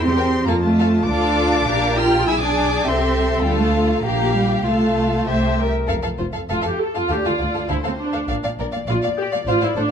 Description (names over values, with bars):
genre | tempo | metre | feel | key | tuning
quick classical-period movement for string orchestra | 101 BPM | 2/4 | rubato | F major | A4 = 440 Hz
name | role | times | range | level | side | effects
warm chamber violin section | melody | 0.0-9.9 s | A4 to F6 | -28 LUFS | left 2 dB | none
rich chamber viola section | accompaniment | 0.0-9.9 s | C4 to C5 | -23 LUFS | left 1 dB | none
warm chamber cello section | bass | 0.0-9.8 s | D2 to F4 | -22 LUFS | right 1 dB | none
warm chamber double bass section | bass | 0.0-9.8 s | F1 to F2 | -24 LUFS | right 2 dB | none
rich chamber violin section | second line | 0.2-9.8 s | F4 to G#5 | -24 LUFS | left 1 dB | none
room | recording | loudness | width
moderate large studio reverb, RT60 1.4 s | dark, warm production | -17 LUFS | side -8 dB against mid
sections
0.0-5.9 A section; 5.9-9.9 B section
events
none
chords
0.5 F; 1.1 Dm; 1.7 Gm7/Bb; 2.3 Bm6; 2.9 C; 3.4 Dm; 4.0 Gm7/Bb; 4.7 F/C; 5.3 C; 5.9 F; 7.1 Dm; 8.3 Bb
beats
0.48 | 1.09 1.69 | 2.28 2.86 | 3.44 4.04 | 4.65 5.28 | 5.90 6.51 | 7.11 7.70 | 8.29 8.89 | 9.47